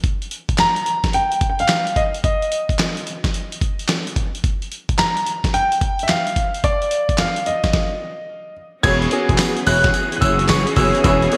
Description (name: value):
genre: R&B, new jack swing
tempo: 109 BPM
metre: 4/4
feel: swing 65% on 16ths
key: unclear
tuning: A4 = 440 Hz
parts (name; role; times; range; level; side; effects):
- dusty soul sampler-style drum kit; drums; 0.0-11.4 s; crash cymbal, handclaps, hi-hat, kick drum, snare drum, tambourine; -23 LUFS; equal; gated reverb
- warm concert grand piano; melody; 0.6-11.4 s; D5 to G#6; -22 LUFS; equal; subtle chorus
- clear concert grand piano; accompaniment; 8.8-11.4 s; B3 to G#4; -25 LUFS; equal; none
- clear studio string section; sustained chords; 8.8-11.4 s; E3 to G#4; -27 LUFS; equal; none
- warm studio string section; stabs; 8.8-11.2 s; E4 to C#5; -26 LUFS; equal; none
- gritty slap bass; bass; 8.8-11.3 s; E1 to F#1; -22 LUFS; equal; overdrive
room: moderate lush hall reverb, RT60 1.9 s, studio reverb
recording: bright 1980s-style digital production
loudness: -19 LUFS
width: mono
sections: 0.0-8.8 A section; 8.8-11.4 B section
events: stop 7.7-8.8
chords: 0.0 N.C.; 8.8 E69